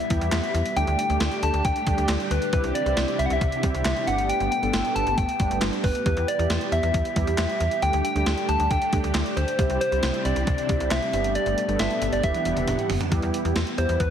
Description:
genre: synth-pop.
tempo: 136 BPM.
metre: 4/4.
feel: straight.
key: E minor.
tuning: A4 = 441 Hz.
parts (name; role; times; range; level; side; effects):
soft struck synth lead; melody; 0.0-14.1 s; B4 to A5; -26 LUFS; left 1 dB; chorus, analog delay.
string machine, cellos; sustained chords; 0.0-14.1 s; C3 to F#5; -32 LUFS; equal; ensemble chorus.
mellow synth brass; accompaniment; 0.1-14.0 s; G3 to A4; -29 LUFS; right 2 dB; chorus.
slap-like FM bass; bass; 0.1-14.1 s; E1 to E2; -27 LUFS; equal; none.
gated 80s digital drum machine; drums; 0.1-14.1 s; handclaps, hi-hat, kick drum, snare drum, toms; -28 LUFS; equal; gated reverb, gated reverb snare.
room: light reverb.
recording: heavily compressed radio sound, multiband compression.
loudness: -21 LUFS.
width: side -8 dB against mid.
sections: 0.0-13.1 A section.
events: drum fill 12.2-13.1.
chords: 0.0 Em; 0.8 Dsus4; 2.5 Cadd9; 4.1 Gadd9; 6.1 Em; 7.8 Dsus4; 9.6 Cadd9; 11.1 Gadd9; 12.2 Em7; 13.1 Em.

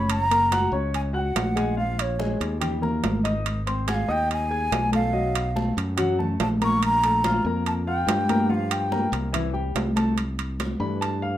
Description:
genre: Afro-Cuban jazz.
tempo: 143 BPM.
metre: 4/4.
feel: straight.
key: unclear.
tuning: A4 = 441 Hz.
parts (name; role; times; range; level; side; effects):
breathy bansuri; melody; 0.0-9.1 s; Db5 to Db6; -25 LUFS; equal; plate reverb.
warm concert grand piano; accompaniment; 0.0-11.4 s; E3 to Ab6; -28 LUFS; left 2 dB; none.
modern bright fingered electric bass; bass; 0.0-11.4 s; Gb1 to G2; -27 LUFS; equal; none.
congas; percussion; 0.1-11.4 s; none; -28 LUFS; equal; none.
timbales; percussion; 0.1-11.2 s; none; -30 LUFS; right 6 dB; none.
room: wet small room reverb, RT60 0.6 s.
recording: none.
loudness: -21 LUFS.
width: side -12 dB against mid.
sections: 0.0-10.2 A section; 10.2-11.4 B section.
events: grand piano solo 10.2-11.4.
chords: 0.1 Gb; 1.8 Bbm7; 2.6 Eb; 3.5 Ab; 5.1 B7; 6.8 Bb5; 8.5 Gm7; 9.3 C; 10.2 C69.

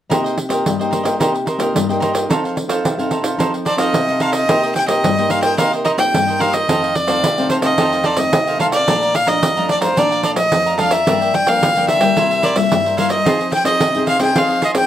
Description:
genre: samba and choro.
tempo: 109 BPM.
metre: 4/4.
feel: straight.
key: C minor.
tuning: A4 = 443 Hz.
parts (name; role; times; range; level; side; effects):
cavaquinho; accompaniment; 0.1-14.8 s; Eb4 to Bb5; -22 LUFS; right 2 dB; none.
nylon-string guitar; accompaniment; 0.1-14.9 s; F2 to A4; -20 LUFS; left 2 dB; none.
pandeiro; percussion; 0.1-14.9 s; none; -20 LUFS; right 2 dB; none.
clear violin; melody; 3.7-14.9 s; C5 to G5; -16 LUFS; equal; none.
room: moderate studio reverb, RT60 0.6 s.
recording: none.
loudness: -14 LUFS.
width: side -11 dB against mid.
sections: 0.1-4.5 A section; 4.5-14.9 B section.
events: none.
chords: 0.1 Cm7; 2.3 F7; 4.5 Cm7; 6.7 F7; 8.9 Bbmaj7; 11.1 Gm7; 12.2 C7; 13.3 Fm7.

